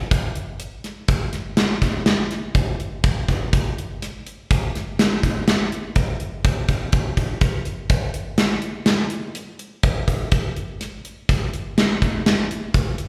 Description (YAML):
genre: progressive instrumental, progressive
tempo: 124 BPM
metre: 7/4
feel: straight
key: none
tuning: none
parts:
  - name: gated 80s drum kit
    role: drums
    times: 0.1-13.1 s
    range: hi-hat, kick drum, snare drum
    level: -21 LUFS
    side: equal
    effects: slapback echo
room: moderate digital room reverb, RT60 1.1 s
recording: live gig heard through the venue's PA, recital hall reverb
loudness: -22 LUFS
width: mono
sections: 0.0-13.1 A section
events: none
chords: none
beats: | 0.12 0.60 1.09 1.58 2.06 2.55 3.04 | 3.52 4.01 4.50 4.98 5.47 5.96 6.44 | 6.93 7.41 7.90 8.38 8.87 9.35 9.84 | 10.32 10.81 11.29 11.78 12.26 12.75